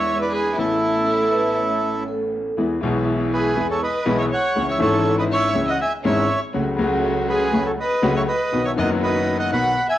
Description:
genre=tango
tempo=121 BPM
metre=4/4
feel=rubato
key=E major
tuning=A4 = 440 Hz
part: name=bandoneon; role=melody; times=0.0-10.0 s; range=E4 to B5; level=-22 LUFS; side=right 2 dB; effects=none
part: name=rich violin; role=second line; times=0.0-10.0 s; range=E4 to F#5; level=-26 LUFS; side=left 1 dB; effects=none
part: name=bright concert grand piano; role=accompaniment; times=0.0-9.7 s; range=F#1 to A4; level=-22 LUFS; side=left 3 dB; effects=none
part: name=dark studio string section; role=stabs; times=0.0-9.7 s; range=C#3 to F#4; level=-28 LUFS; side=right 3 dB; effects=none
part: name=vibraphone with soft mallets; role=second line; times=1.1-2.5 s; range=A4 to C#5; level=-24 LUFS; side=right 2 dB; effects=none
room=moderate large studio reverb, RT60 1.1 s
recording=worn, warbling old tape, cassette tape, warbly pitch drift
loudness=-18 LUFS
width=side -13 dB against mid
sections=0.0-2.6 A section; 2.6-10.0 B section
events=none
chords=0.0 E7; 0.6 Aadd9; 2.6 E; 4.6 C#m; 6.5 F#m/C#; 8.5 B

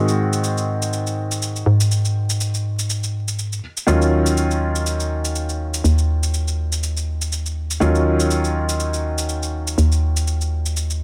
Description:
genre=deep house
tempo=122 BPM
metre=4/4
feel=swing 56% on 16ths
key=Eb dorian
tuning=A4 = 440 Hz
part: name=felt-muted upright piano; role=stabs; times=0.0-11.0 s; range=Eb3 to Gb4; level=-25 LUFS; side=equal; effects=low-pass filter, tape echo
part: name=hollow knocking FM bass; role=bass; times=0.0-11.0 s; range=Eb2 to Ab2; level=-22 LUFS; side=equal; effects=none
part: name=shaker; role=drums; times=0.1-11.0 s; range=none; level=-29 LUFS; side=equal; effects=none
room=light reverb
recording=vinyl crackle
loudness=-20 LUFS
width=mono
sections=0.0-11.0 A section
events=filter sweep on felt piano 0.0-11.0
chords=0.0 Ab7; 3.9 Ebm9

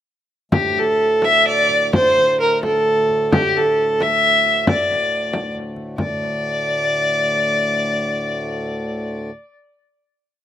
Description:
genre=medieval dance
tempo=85-99 BPM (dotted quarters)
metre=6/8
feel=straight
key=unclear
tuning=A4 = 439 Hz
part: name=rich fiddle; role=melody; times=0.5-9.3 s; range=G4 to E5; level=-16 LUFS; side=equal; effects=slapback echo
part: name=pedal harmonium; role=drone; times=0.5-9.3 s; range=D2 to A2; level=-28 LUFS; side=left 1 dB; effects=none
part: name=frame drum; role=percussion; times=0.5-6.2 s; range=none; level=-20 LUFS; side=left 1 dB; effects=slapback echo
room=light reverb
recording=recorded outdoors, with no room sound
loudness=-15 LUFS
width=side -10 dB against mid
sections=0.5-6.0 A section; 6.0-8.5 final chord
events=speeding up 0.5-8.5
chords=none

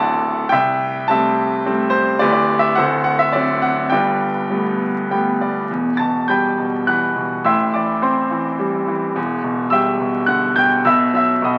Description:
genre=classical, lyrical solo piano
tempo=105 BPM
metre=3/4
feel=rubato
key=G major, E minor from 5.7 s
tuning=A4 = 441 Hz
part: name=bright grand piano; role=solo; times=0.0-11.6 s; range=D1 to A6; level=-18 LUFS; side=equal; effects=none
room=moderate studio reverb, RT60 0.7 s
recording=very old 78 rpm record, vinyl crackle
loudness=-18 LUFS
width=mono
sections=0.0-5.7 A section; 5.7-11.6 B section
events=grand piano fill 4.8-5.7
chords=0.0 D; 0.5 Am7/C; 2.2 G/D; 2.8 D7; 3.9 Gadd9; 5.7 Emadd9; 7.4 Am7; 9.2 Em7; 10.8 Bsus4

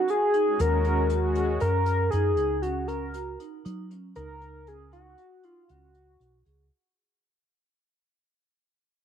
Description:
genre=progressive instrumental, band music in an uneven meter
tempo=118 BPM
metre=5/4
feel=straight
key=unclear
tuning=A4 = 439 Hz
part: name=pulse-width lead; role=melody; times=0.0-6.5 s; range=F4 to Bb4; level=-26 LUFS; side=left 1 dB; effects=chorus, tape echo
part: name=vibraphone with soft mallets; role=arpeggios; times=0.1-6.6 s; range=Db4 to Ab4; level=-34 LUFS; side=right 9 dB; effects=none
part: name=hi-hat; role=drums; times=0.1-6.6 s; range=none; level=-50 LUFS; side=left 10 dB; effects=none
part: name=warm analog pad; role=accompaniment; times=0.5-1.5 s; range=Ab3 to Gb4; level=-32 LUFS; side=left 3 dB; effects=chorus
part: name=hollow-body short-scale fingered electric bass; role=bass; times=0.6-6.7 s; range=Cb2 to Gb3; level=-28 LUFS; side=equal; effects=none
room=moderate spring reverb, RT60 1.6 s, small room ambience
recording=1960s-style stereo with parts hard left and right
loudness=-23 LUFS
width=side -8 dB against mid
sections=0.0-6.7 A section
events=fade-out 0.0-6.7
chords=0.0 Ebm7; 1.6 Gbadd9; 4.2 Dbsus4

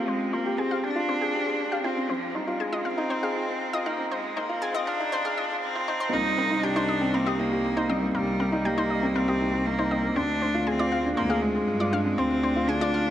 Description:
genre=piano and strings electronica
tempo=119 BPM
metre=4/4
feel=straight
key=C minor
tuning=A4 = 440 Hz
part: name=rich cello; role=melody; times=0.0-13.1 s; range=F3 to Eb4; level=-27 LUFS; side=equal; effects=low-pass filter, digital delay
part: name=felt-muted upright piano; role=riff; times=0.0-13.1 s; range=Bb3 to Ab4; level=-28 LUFS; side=equal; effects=digital delay
part: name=analog pluck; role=arpeggios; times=0.1-13.0 s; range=Bb4 to Ab5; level=-33 LUFS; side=left 2 dB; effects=chorus, digital delay
part: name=bright studio cello section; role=bass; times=6.1-13.1 s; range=C2 to G2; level=-30 LUFS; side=equal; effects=tube saturation
room=moderate huge ambient reverb, RT60 7.8 s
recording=high-pass filter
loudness=-24 LUFS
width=side -11 dB against mid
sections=0.0-6.1 A section; 6.1-13.1 B section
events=build-up 0.0-6.1; filter sweep on synth arpeggio sound 0.0-6.1; drop 6.1-13.1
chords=0.0 Fmadd9; 2.1 Ab6; 6.1 Cm7; 10.2 Dm7b5

